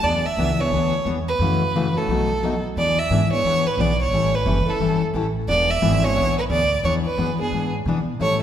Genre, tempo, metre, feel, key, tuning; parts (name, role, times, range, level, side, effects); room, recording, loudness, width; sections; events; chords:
acoustic string swing (jazz manouche); 177 BPM; 4/4; swing 60% on 8ths; E mixolydian; A4 = 440 Hz
rich violin; melody; 0.0-8.4 s; G#4 to E5; -22 LUFS; right 2 dB
picked steel-string acoustic guitar; accompaniment; 0.0-8.4 s; B2 to A4; -23 LUFS; left 4 dB
upright bass; bass; 0.0-8.4 s; E1 to B2; -25 LUFS; right 1 dB
wet concert hall reverb, RT60 2.0 s; recorded in a church or concert hall; -18 LUFS; side -10 dB against mid
0.0-2.8 A section; 2.8-8.4 A section
0.0 E7; 1.4 F#m7; 2.1 B7; 2.8 E7; 4.1 A7; 5.5 E7